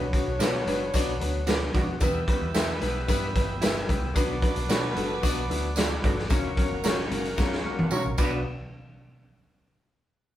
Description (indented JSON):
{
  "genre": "uptempo 1960s-style soul",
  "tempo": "112 BPM",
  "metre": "4/4",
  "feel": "straight",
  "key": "B minor",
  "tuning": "A4 = 439 Hz",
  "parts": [
    { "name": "warm horn section", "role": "second line", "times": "0.0-8.4 s", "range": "F#3 to C#5", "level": "-35 LUFS", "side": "equal", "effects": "none" },
    { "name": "clear grand piano", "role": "accompaniment", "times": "0.0-8.4 s", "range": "F#3 to D5", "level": "-30 LUFS", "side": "left 3 dB", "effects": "none" },
    { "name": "percussive tonewheel organ", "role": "sustained chords", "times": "0.0-8.4 s", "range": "B3 to E6", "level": "-38 LUFS", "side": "equal", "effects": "overdrive, slow rotary speaker" },
    { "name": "vintage muted fingered electric bass", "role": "bass", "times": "0.0-8.4 s", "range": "F#1 to B2", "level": "-33 LUFS", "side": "equal", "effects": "none" },
    { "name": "raw garage drum kit", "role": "drums", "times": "0.1-8.3 s", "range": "crash cymbal, hi-hat, kick drum, snare drum, toms", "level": "-26 LUFS", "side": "equal", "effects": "none" },
    { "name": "electric guitar through a small old amp", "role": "stabs", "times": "0.4-8.3 s", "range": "C#4 to E5", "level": "-32 LUFS", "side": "right 2 dB", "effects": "none" },
    { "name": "tambourine", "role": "percussion", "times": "0.4-8.4 s", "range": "none", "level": "-39 LUFS", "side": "right 4 dB", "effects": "none" }
  ],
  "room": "light reverb",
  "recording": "band playing live in one room",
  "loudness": "-24 LUFS",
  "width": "side -12 dB against mid",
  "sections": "0.0-8.5 A section; 8.5-10.4 B section",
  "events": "drum fill 7.4-8.5",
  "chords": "0.0 Bm; 2.0 Em; 4.2 Bm; 6.3 F#; 8.2 Bm; 8.5 N.C."
}